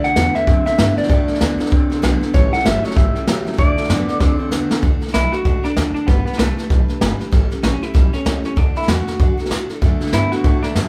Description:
rockabilly; 192 BPM; 4/4; swing 60% on 8ths; D major; A4 = 440 Hz
electric guitar through a small old amp; melody; 0.0-10.9 s; A3 to F#5; -24 LUFS; equal
picked steel-string acoustic guitar; accompaniment; 0.0-10.9 s; A2 to B4; -32 LUFS; equal
electric guitar through a small old amp; riff; 0.0-4.8, 9.8-10.9 s; A2 to C4; -24 LUFS; equal
upright bass; bass; 0.0-10.9 s; G1 to A2; -24 LUFS; equal
jazz brush drum kit; drums; 0.0-10.8 s; hi-hat, kick drum, snare drum; -20 LUFS; equal
light reverb; band playing live in one room; -17 LUFS; mono
0.0-4.8 A section; 4.8-10.9 B section
drum fill 4.2-4.8
0.0 D; 2.3 A7; 3.6 D; 6.1 G; 7.3 A7; 8.6 D

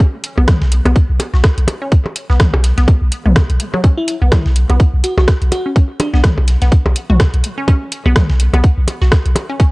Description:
minimal techno; 125 BPM; 4/4; swing 58% on 16ths; B minor; A4 = 440 Hz
dusty soul sampler-style drum kit; drums; 0.0-9.7 s; hi-hat, snare drum; -30 LUFS; equal; high-pass filter on hats, high-pass filter on snare, high-pass filter on room
electronic kick drum; drums; 0.0-9.7 s; -10 LUFS; equal
electronic percussion blips and toms; percussion; 0.0-9.5 s; -20 LUFS; equal; analog delay
booming analog drum machine; drums; 0.2-9.5 s; hi-hat, rim click; -21 LUFS; equal
resonant blip pluck; riff; 0.4-9.7 s; F#3 to F#4; -24 LUFS; equal; phaser, sidechain pumping, analog delay
punchy sub bass; bass; 0.4-9.3 s; B1; -12 LUFS; equal; sidechain pumping
bell-like FM electric piano; melody; 4.0-6.2 s; D4 to F#4; -22 LUFS; equal; chorus, tremolo, analog delay
digital ambience; dry, gritty hardware recording, cassette tape; -11 LUFS; side -24 dB against mid
0.0-9.7 A section

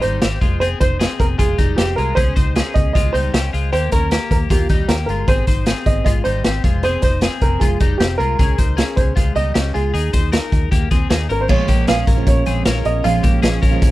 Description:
jangly indie pop; 154 BPM; 4/4; straight; A4 = 435 Hz
warm upright piano; melody; 0.0-13.4 s; G4 to F5; -22 LUFS; right 3 dB; tape echo
twelve-string electric guitar; arpeggios; 0.0-13.9 s; G3 to C5; -24 LUFS; left 7 dB; tape echo
vintage muted fingered electric bass; bass; 0.0-13.9 s; F1 to Eb2; -20 LUFS; equal
raw garage drum kit; drums; 0.0-13.9 s; crash cymbal, hi-hat, kick drum, snare drum; -17 LUFS; equal
picked steel-string acoustic guitar; accompaniment; 11.5-13.9 s; Bb2 to F4; -22 LUFS; right 6 dB
little or no reverb; -14 LUFS; side -16 dB against mid
0.0-11.5 A section; 11.5-13.9 B section
0.4 Fmadd9; 2.2 Dbadd9; 3.7 Eb; 5.3 Ab; 6.6 Fmadd9; 8.4 Dbadd9; 9.9 Ebsus4; 11.5 Bbm7

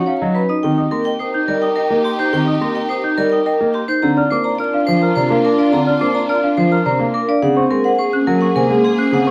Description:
classical, minimalist pattern music; 106 BPM; 3/4; straight; Eb major; A4 = 437 Hz
vibraphone with hard mallets; melody; 0.0-9.3 s; G4 to Bb5; -23 LUFS; equal
rich symphonic string section; sustained chords; 0.0-9.3 s; Bb3 to Ab4; -26 LUFS; equal
celesta; arpeggios; 0.0-9.3 s; D#5 to G6; -25 LUFS; equal
marimba with soft mallets; arpeggios; 0.0-9.3 s; C4 to Eb5; -22 LUFS; equal
warm grand piano; accompaniment; 0.2-9.3 s; C3 to Eb4; -21 LUFS; equal
light reverb; vinyl crackle; -16 LUFS; mono
0.0-9.3 A section
0.0 Badd9; 0.6 Eb; 4.0 Bb; 7.4 Gbadd9

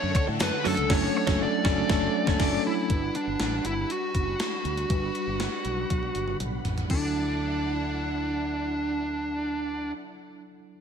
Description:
1980s-style pop; 120 BPM; 4/4; straight; D major; A4 = 440 Hz
dark smooth lead guitar; melody; 0.0-9.9 s; D4 to D5; -30 LUFS; right 1 dB; overdrive
cranked stack guitar; accompaniment; 0.0-2.6 s; D3 to D4; -38 LUFS; left 8 dB
mellow tine electric piano; accompaniment; 0.0-10.8 s; F#3 to B4; -32 LUFS; equal; medium stereo tremolo
string machine, violas; sustained chords; 0.0-9.9 s; G3 to B5; -38 LUFS; equal; ensemble chorus
direct-recorded clean electric guitar; riff; 0.0-2.6 s; C#4 to C#5; -36 LUFS; right 10 dB; lush chorus
fretless electric bass; bass; 0.0-9.9 s; F#1 to A2; -33 LUFS; equal
gated 80s digital drum machine; drums; 0.1-7.0 s; crash cymbal, hi-hat, kick drum, snare drum, tambourine, toms; -29 LUFS; equal; gated reverb, gated reverb snare, overdrive
group handclap; percussion; 0.4-0.5 s; barely audible
light reverb; -25 LUFS; side -7 dB against mid
0.0-2.9 A section; 2.9-6.9 B section; 6.9-10.8 C section
band accent 0.9-2.9; drum fill 5.9-6.9
0.0 Dmaj7; 2.9 Gmaj7; 6.9 Dadd9

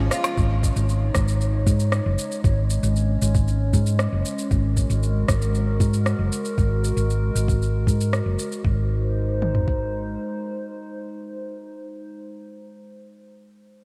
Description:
folktronica; 116 BPM; 4/4; straight; Ab mixolydian; A4 = 438 Hz
warbly tape-like pad; sustained chords; 0.0-11.8 s; Ab3 to Db5; -32 LUFS; equal; chorus, built-in reverb
hollow-body short-scale fingered electric bass; bass; 0.0-10.2 s; Gb1 to Ab2; -24 LUFS; equal
organic electronic drum kit; drums; 0.1-8.6 s; hi-hat, rim click, shaker; -33 LUFS; equal
organic electronic drum kit; drums; 0.4-9.8 s; kick drum, toms; -24 LUFS; equal
moderate cathedral reverb, RT60 5.6 s; dreamy mix soaked in reverb; -22 LUFS; mono
0.4-8.6 A section; 8.6-12.8 B section
break 0.0-0.4; drum fill 0.1
0.4 Absus4; 4.5 Gb; 8.6 Ab

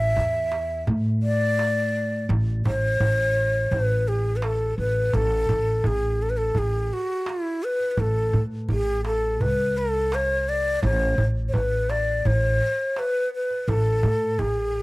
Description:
Arabic maqam ensemble; 84 BPM; 4/4; straight; A maqam rast; A4 = 440 Hz
breathy ney; melody; 0.0-14.8 s; E4 to E5; -24 LUFS; equal
upright bass; bass; 0.0-14.8 s; A1 to A2; -25 LUFS; equal
darbuka; percussion; 0.2-14.7 s; -27 LUFS; right 1 dB
studio reverb; dry, close 1970s-style studio recording; -21 LUFS; side -21 dB against mid
0.0-5.1 A section; 5.1-14.8 B section

